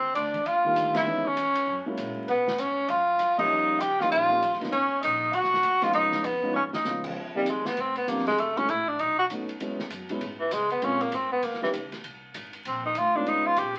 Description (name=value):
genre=jazz, small-group swing and bop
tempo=197 BPM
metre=4/4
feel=swing 62% on 8ths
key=unclear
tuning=A4 = 440 Hz
part: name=warm tenor saxophone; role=melody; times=0.0-13.8 s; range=E3 to G4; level=-27 LUFS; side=equal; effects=none
part: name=breathy alto saxophone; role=second line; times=0.0-7.0 s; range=B4 to G5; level=-37 LUFS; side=equal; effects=none
part: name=upright bass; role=bass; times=0.0-13.8 s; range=F1 to Db3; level=-48 LUFS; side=equal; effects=none
part: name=open jazz drum kit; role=drums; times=0.2-13.8 s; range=crash cymbal, hi-hat, kick drum, ride cymbal, snare drum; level=-41 LUFS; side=equal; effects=none
part: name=dark baby grand piano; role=accompaniment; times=0.6-13.6 s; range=Eb3 to G4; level=-35 LUFS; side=equal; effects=none
room=wet club reverb, RT60 0.8 s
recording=very old 78 rpm record, vinyl crackle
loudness=-26 LUFS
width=mono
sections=0.0-7.2 A section; 7.2-13.8 B section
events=band accent 0.9, 3.3; drum fill 6.6-6.9; tenor saxophone solo 7.2-13.8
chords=0.0 Ebmaj9; 1.1 Dbm7; 1.7 Gb7; 2.3 Bmaj9; 3.5 Eb7; 4.7 Abm11; 5.9 Db9; 7.2 Eb69; 8.4 Gbm7; 9.0 B7; 9.6 E69; 10.8 Bbm7; 11.4 Eb7; 12.0 Abadd9; 13.3 Db9